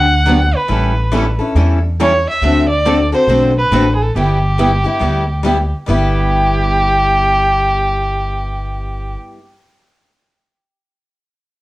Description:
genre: acoustic string swing (jazz manouche)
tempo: 139 BPM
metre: 4/4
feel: swing 64% on 8ths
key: G major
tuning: A4 = 440 Hz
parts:
  - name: warm violin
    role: melody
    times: 0.0-9.1 s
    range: G4 to F#5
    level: -16 LUFS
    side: right 1 dB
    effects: none
  - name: picked acoustic archtop guitar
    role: accompaniment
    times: 0.0-9.4 s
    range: D3 to A4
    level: -21 LUFS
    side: right 2 dB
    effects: none
  - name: picked steel-string acoustic guitar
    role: accompaniment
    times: 0.0-9.4 s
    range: D3 to A4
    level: -20 LUFS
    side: left 3 dB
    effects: none
  - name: upright bass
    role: bass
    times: 0.0-9.1 s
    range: G1 to E2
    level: -16 LUFS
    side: equal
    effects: none
room: moderate studio reverb, RT60 0.6 s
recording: worn, warbling old tape, cassette tape, warbly pitch drift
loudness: -12 LUFS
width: side -18 dB against mid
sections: 0.0-5.9 A section; 5.9-9.3 B section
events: none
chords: 0.0 Gmaj7; 0.7 A7; 2.4 D7; 4.2 G6

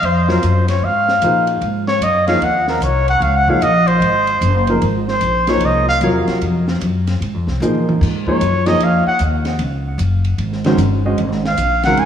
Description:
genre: modal jazz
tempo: 151 BPM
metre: 4/4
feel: swing 65% on 8ths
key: Ab mixolydian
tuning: A4 = 438 Hz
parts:
  - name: breathy trumpet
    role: melody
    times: 0.0-12.1 s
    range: Bb4 to Ab5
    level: -16 LUFS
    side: equal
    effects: tape echo
  - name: upright bass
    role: bass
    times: 0.0-12.1 s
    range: Gb1 to Bb2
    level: -18 LUFS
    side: left 1 dB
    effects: none
  - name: compact cocktail drum kit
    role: drums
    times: 0.0-12.1 s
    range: crash cymbal, hi-hat, kick drum, ride cymbal, snare drum, toms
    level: -26 LUFS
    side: equal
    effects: none
  - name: warm baby grand piano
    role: accompaniment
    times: 0.3-12.1 s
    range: C3 to Eb5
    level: -20 LUFS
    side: equal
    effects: none
room: wet lush hall reverb, RT60 2.3 s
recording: dreamy mix soaked in reverb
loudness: -13 LUFS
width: side -8 dB against mid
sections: 0.0-12.1 A section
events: trumpet solo 0.0-12.1; drum fill 7.6-8.0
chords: 0.0 Fm; 1.6 Ab9sus4; 4.8 Fm/Ab; 8.0 Ab9sus4; 11.2 Fm

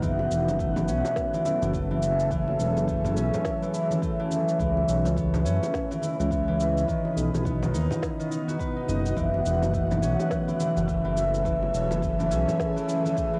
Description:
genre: organic downtempo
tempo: 105 BPM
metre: 4/4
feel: swing 60% on 16ths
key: F# dorian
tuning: A4 = 443 Hz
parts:
  - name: granular cloud pad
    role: sustained chords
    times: 0.0-13.4 s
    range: B2 to F#5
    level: -35 LUFS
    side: equal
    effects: built-in reverb, sidechain pumping, cassette tape
  - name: concert harp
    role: arpeggios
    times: 0.0-13.4 s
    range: D#3 to D#5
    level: -28 LUFS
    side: equal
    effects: cassette tape, analog delay
  - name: smooth synth bass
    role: bass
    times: 0.0-12.5 s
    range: E1 to F#2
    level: -30 LUFS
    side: equal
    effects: sidechain pumping
  - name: electronic kick drum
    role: drums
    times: 0.0-13.3 s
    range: none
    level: -36 LUFS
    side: equal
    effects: cassette tape
  - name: electronic shaker and snare drum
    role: drums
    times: 0.0-13.3 s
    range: none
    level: -41 LUFS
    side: equal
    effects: cassette tape
  - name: bongos and congas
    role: percussion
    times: 0.2-13.1 s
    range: none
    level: -39 LUFS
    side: equal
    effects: none
room: light reverb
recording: home recording on cassette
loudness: -26 LUFS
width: mono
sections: 0.0-13.4 A section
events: none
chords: 0.0 F#m7; 4.6 C#m7; 6.9 B; 9.2 F#m7

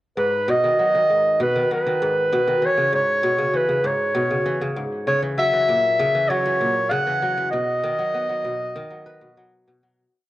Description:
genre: folktronica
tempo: 98 BPM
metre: 4/4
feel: straight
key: B major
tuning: A4 = 441 Hz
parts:
  - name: clear clarinet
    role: melody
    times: 0.2-9.6 s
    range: B4 to F#5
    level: -19 LUFS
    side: equal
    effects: cassette tape, plate reverb
  - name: kora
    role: arpeggios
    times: 0.2-10.3 s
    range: G#2 to B4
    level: -25 LUFS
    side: left 1 dB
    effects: cassette tape, plate reverb
room: wet studio reverb, RT60 0.6 s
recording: home recording on cassette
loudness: -18 LUFS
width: side -15 dB against mid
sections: 0.2-10.0 groove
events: fade-out 6.7-10.0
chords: 0.2 G#m7; 2.6 C#m7/G#; 5.1 F#7; 7.5 B

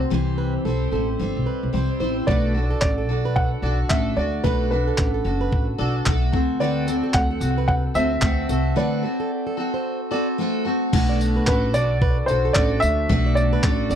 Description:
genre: acoustic pop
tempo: 111 BPM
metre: 4/4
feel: swing 60% on 16ths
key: unclear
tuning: A4 = 439 Hz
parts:
  - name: dark upright piano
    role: melody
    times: 0.0-14.0 s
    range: B4 to F#5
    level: -26 LUFS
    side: equal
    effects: tape echo
  - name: picked steel-string acoustic guitar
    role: accompaniment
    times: 0.0-14.0 s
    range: B2 to C5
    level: -24 LUFS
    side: left 1 dB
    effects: double-tracked left and right
  - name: upright bass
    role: bass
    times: 0.0-14.0 s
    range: F#1 to D2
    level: -23 LUFS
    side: equal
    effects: none
  - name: fingerpicked plugged-in steel-string acoustic guitar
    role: arpeggios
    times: 0.4-14.0 s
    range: A4 to D5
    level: -31 LUFS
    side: right 7 dB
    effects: none
  - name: dusty soul sampler-style drum kit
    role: drums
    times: 2.3-14.0 s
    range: crash cymbal, handclaps, kick drum, tambourine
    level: -22 LUFS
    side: equal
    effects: none
room: little or no reverb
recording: dry, close 1970s-style studio recording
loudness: -19 LUFS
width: side -9 dB against mid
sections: 0.0-2.3 A section; 2.3-10.9 B section; 10.9-14.0 C section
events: break 8.8-10.9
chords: 0.1 C; 2.3 Bm7; 6.3 D7; 10.9 Bm7

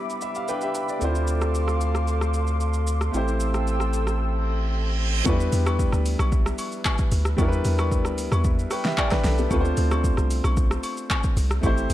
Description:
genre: amapiano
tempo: 113 BPM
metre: 4/4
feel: straight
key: E phrygian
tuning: A4 = 440 Hz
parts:
  - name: clear concert grand piano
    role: accompaniment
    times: 0.0-11.9 s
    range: F3 to B5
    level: -28 LUFS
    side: equal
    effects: none
  - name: airy breathy pad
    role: sustained chords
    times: 0.0-5.2 s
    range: G4 to E6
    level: -31 LUFS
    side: equal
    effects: chorus, sidechain pumping
  - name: downlifter and reverse cymbal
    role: sound effects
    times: 4.5-5.3 s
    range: none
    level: -31 LUFS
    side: right 6 dB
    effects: none
  - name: deep house drum kit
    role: drums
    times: 0.1-11.9 s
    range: handclaps, hi-hat, kick drum, rim click, shaker, snare drum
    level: -26 LUFS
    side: equal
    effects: none
  - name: saturated sub bass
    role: bass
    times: 1.0-5.2 s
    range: A1 to D2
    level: -24 LUFS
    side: equal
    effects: none
  - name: deep log drum bass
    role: bass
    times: 5.3-11.9 s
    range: A1 to E2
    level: -23 LUFS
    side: equal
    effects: none
  - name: agogo bells and woodblock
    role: percussion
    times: 5.3-11.8 s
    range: none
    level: -34 LUFS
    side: left 4 dB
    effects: none
room: digital ambience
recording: dark, warm production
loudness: -21 LUFS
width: side -14 dB against mid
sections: 0.0-5.3 A section; 5.3-11.9 B section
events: grand piano fill 0.0-1.0; silent gap 4.2-5.3; reverse cymbal 4.5-5.3; drop 5.3-11.9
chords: 0.0 Em7; 1.0 Dm7; 3.1 Am7; 5.3 Em7; 9.5 Dm7

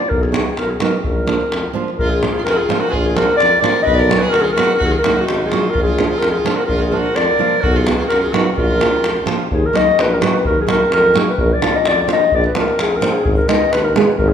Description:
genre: balkan folk, Balkan wedding band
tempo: 128 BPM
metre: 2/4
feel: straight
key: Bb phrygian dominant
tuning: A4 = 440 Hz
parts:
  - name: dark clarinet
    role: melody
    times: 0.0-14.3 s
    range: Gb4 to Eb5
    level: -16 LUFS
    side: left 2 dB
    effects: none
  - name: warm tuba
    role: bass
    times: 0.1-14.3 s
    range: Gb1 to F#2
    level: -22 LUFS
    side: equal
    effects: none
  - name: davul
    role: percussion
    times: 0.1-14.3 s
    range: none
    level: -20 LUFS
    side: left 1 dB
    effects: none
  - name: nylon-string guitar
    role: accompaniment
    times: 0.3-14.1 s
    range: F3 to Ab4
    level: -21 LUFS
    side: right 5 dB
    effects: none
  - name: rich violin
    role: second line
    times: 2.0-9.2 s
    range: Eb4 to B4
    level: -23 LUFS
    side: right 3 dB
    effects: none
room: wet recital hall reverb, RT60 1.6 s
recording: minimal, uncompressed stereo recording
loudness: -13 LUFS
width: side -8 dB against mid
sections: 0.0-2.0 A section; 2.0-9.5 A section; 9.5-14.3 B section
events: none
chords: 0.1 B; 1.0 Bb; 3.9 B; 4.8 Ebm; 5.8 Bb; 7.6 B; 8.6 Bb; 9.5 Ebm; 11.4 Bb; 13.3 Abm

